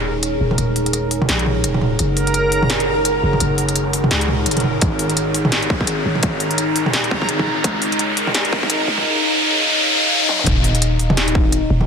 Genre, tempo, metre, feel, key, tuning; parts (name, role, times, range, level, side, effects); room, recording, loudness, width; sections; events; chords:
half-time drum and bass; 170 BPM; 4/4; swing 60% on 16ths, half-time; Eb minor; A4 = 440 Hz
deep dark ambient pad; sustained chords; 0.0-11.9 s; Eb4 to Gb5; -23 LUFS; left 1 dB; chorus, built-in reverb, sidechain pumping
growling 808-style bass; bass; 0.0-11.9 s; Eb1 to Db2; -22 LUFS; equal; tube saturation
riser; sound effects; 0.1-10.5 s; -22 LUFS; equal
backwards swelling texture; texture; 0.1-9.1 s; Bb4; -25 LUFS; right 2 dB; built-in reverb
industrial drum kit; drums; 0.2-11.9 s; hi-hat, snare drum, toms; -21 LUFS; equal; overdrive
electronic kick drum; drums; 4.8-11.4 s; -20 LUFS; equal; distortion, overdrive
light reverb; dense, heavily limited modern master, high-pass filter; -15 LUFS; side -6 dB against mid
0.0-10.5 A section; 10.5-11.9 B section
build-up 0.0-10.5; filter sweep 0.0-10.5; riser 0.1-10.5; drum fill 10.3; drop 10.5-11.9
0.0 Ebm; 2.0 Gbsus2; 4.8 Ab5; 7.6 Db; 10.5 Ebm